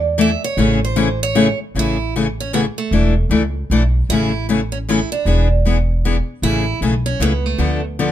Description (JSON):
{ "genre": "acoustic string swing (jazz manouche)", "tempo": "154 BPM", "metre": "3/4", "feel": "swing 61% on 8ths", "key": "A major", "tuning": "A4 = 440 Hz", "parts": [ { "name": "upright bass", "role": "bass", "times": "0.0-8.1 s", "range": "E1 to E2", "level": "-19 LUFS", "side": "equal", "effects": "none" }, { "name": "picked steel-string acoustic guitar", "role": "melody", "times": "0.2-7.8 s", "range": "A3 to E5", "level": "-23 LUFS", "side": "right 6 dB", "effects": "none" }, { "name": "picked steel-string acoustic guitar", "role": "accompaniment", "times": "0.2-8.1 s", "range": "C#3 to A4", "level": "-18 LUFS", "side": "left 4 dB", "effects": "none" } ], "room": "light reverb", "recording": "minimal, uncompressed stereo recording", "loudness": "-15 LUFS", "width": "side -11 dB against mid", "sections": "0.0-1.7 A section; 1.7-8.1 B section", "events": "steel-string acoustic guitar solo 0.0-1.7", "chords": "0.0 E7sus4; 0.6 Amaj7; 2.9 E7sus4; 4.1 Amaj7; 5.3 E7; 6.4 Amaj7; 7.6 Dm6" }